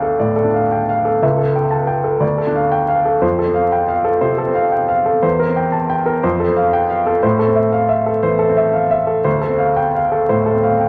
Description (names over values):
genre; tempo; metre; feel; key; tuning
classical, romantic character piece for solo piano; 119 BPM; 4/4; rubato; unclear; A4 = 440 Hz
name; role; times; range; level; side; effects
clear grand piano; solo; 0.0-10.9 s; C#2 to A5; -16 LUFS; equal; none
room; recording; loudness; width
wet large studio reverb, RT60 1.4 s; vinyl crackle; -16 LUFS; mono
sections
0.0-10.9 A section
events
none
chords
0.0 Dm; 1.2 A7/C#; 2.2 Dm; 3.2 F; 5.2 C7/E; 6.2 F; 7.2 Am; 9.3 Dm7